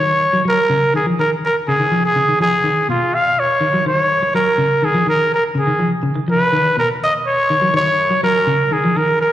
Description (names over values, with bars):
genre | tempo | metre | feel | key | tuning
afrobeat | 124 BPM | 4/4 | straight | Eb minor | A4 = 440 Hz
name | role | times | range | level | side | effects
growling trumpet | melody | 0.0-9.3 s | F4 to F5 | -15 LUFS | equal | slapback echo
semi-hollow electric guitar | arpeggios | 0.0-9.1 s | Cb3 to Gb3 | -20 LUFS | left 1 dB | slapback echo
room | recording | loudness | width
moderate club ambience, RT60 0.5 s | live gig heard through the venue's PA, recital hall reverb | -14 LUFS | side -12 dB against mid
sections
0.0-9.3 A section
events
none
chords
0.0 Ebm7; 1.7 Db9 (rootless); 3.6 Ebm7; 5.6 Db9 (rootless); 7.5 Ebm7